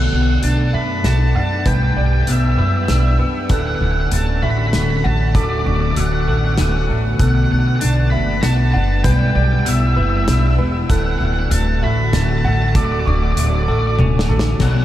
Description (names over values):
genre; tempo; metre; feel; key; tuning
post-rock; 97 BPM; 3/4; straight; D major; A4 = 445 Hz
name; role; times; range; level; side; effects
octave-fuzz lead guitar; melody; 0.0-14.8 s; D5 to B5; -23 LUFS; equal; distortion, tape echo
soft additive organ-like pad; sustained chords; 0.0-14.8 s; D3 to D5; -25 LUFS; left 1 dB; ensemble chorus, built-in reverb
felt-muted upright piano; arpeggios; 0.0-14.8 s; A4 to C#6; -28 LUFS; right 2 dB; tape echo
semi-hollow electric guitar; arpeggios; 0.0-14.8 s; D2 to B4; -25 LUFS; left 1 dB; wide subtle chorus, tape echo
upright bass; bass; 0.0-14.8 s; D1 to F#2; -16 LUFS; equal; none
loose indie drum kit; drums; 0.4-14.7 s; hi-hat, kick drum, snare drum, toms; -22 LUFS; equal; none
thick fuzz guitar; riff; 14.6-14.8 s; B2 to F#3; -19 LUFS; left 7 dB; distortion
room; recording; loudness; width
moderate huge ambient reverb, RT60 7.2 s; dreamy mix soaked in reverb; -14 LUFS; side -13 dB against mid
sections
0.0-14.6 A section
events
drum fill 14.0-14.6, 14.6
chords
0.0 Bm7; 1.7 G6/B; 3.5 Dmaj7; 7.2 Bm7; 9.0 G6/B; 10.9 Dmaj7